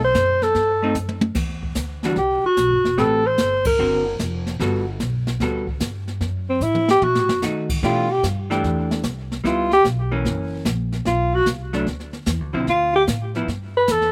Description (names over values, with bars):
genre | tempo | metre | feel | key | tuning
jazz, small-group swing and bop | 149 BPM | 4/4 | swing 67% on 8ths | unclear | A4 = 437 Hz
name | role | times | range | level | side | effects
mellow alto saxophone | melody | 0.0-14.1 s | C4 to C5 | -20 LUFS | equal | slapback echo
upright bass | bass | 0.0-14.1 s | E1 to D#3 | -28 LUFS | equal | none
jazz brush drum kit | drums | 0.1-14.1 s | brushed snare drum, crash cymbal, hi-hat, kick drum, ride cymbal, snare drum, toms | -28 LUFS | equal | none
vintage hollow-body jazz guitar | accompaniment | 0.8-13.5 s | D3 to B4 | -26 LUFS | equal | none
room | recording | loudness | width
little or no reverb | recorded outdoors, with no room sound | -21 LUFS | mono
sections
0.0-7.8 A section; 7.8-14.1 B section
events
drum fill 1.0-1.4, 6.6-7.4; band accent 3.6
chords
0.0 B7(no3) (rootless); 1.4 Em9; 3.0 Am9; 3.8 D7alt; 4.6 Gmaj9; 6.2 F#m7; 7.0 B7; 7.8 Em7; 9.4 C#m7b5; 10.3 F#7; 11.1 Bm; 12.7 Dmadd9; 13.5 Emadd11